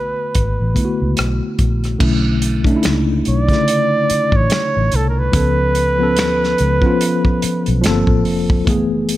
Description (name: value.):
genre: R&B, neo-soul.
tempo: 72 BPM.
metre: 4/4.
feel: swing 59% on 16ths.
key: B dorian.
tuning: A4 = 440 Hz.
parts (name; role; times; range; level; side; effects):
warm flugelhorn; melody; 0.0-7.7 s; A4 to D5; -19 LUFS; right 2 dB; none.
tine electric piano; accompaniment; 0.0-9.2 s; C#3 to A4; -18 LUFS; left 2 dB; medium stereo tremolo.
vintage muted fingered electric bass; bass; 0.0-9.2 s; F1 to D2; -18 LUFS; equal; none.
warm soul drum kit; drums; 0.3-9.2 s; crash cymbal, finger snaps, hi-hat, kick drum, rim click, snare drum; -19 LUFS; equal; none.
room: light reverb, small room reverb.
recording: none.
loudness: -13 LUFS.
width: side -15 dB against mid.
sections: 0.0-2.0 A section; 2.0-9.2 B section.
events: none.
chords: 0.0 Bm7; 2.0 Bm11; 5.3 C#aug7; 7.8 Gm11; 8.7 F#m11.